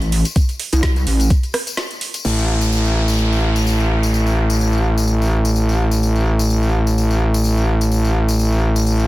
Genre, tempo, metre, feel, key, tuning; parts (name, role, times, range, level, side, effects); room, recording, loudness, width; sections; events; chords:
bass house; 127 BPM; 4/4; swing 55% on 16ths; A minor; A4 = 440 Hz
pulsing pluck wobble bass; bass; 0.0-1.3 s; A1 to C2; -15 LUFS; equal; chorus, overdrive, sidechain pumping
garage drum kit; drums; 0.0-2.4 s; crash cymbal, hi-hat, rim click, snare drum; -24 LUFS; right 1 dB; overdrive
tambourine; percussion; 0.0-9.1 s; -28 LUFS; left 5 dB
electronic kick drum; drums; 0.4-1.4 s; -16 LUFS; equal; overdrive
metallic wobble bass; bass; 2.2-9.1 s; A1; -15 LUFS; equal; distortion, chorus, overdrive, sidechain pumping
downlifter; sound effects; 2.2-6.0 s; -26 LUFS; equal
little or no reverb; dense, heavily limited modern master; -15 LUFS; side -17 dB against mid
0.0-2.2 A section; 2.2-9.1 B section
drop 0.0-2.2; break 1.8-2.2
0.0 Am; 2.2 N.C.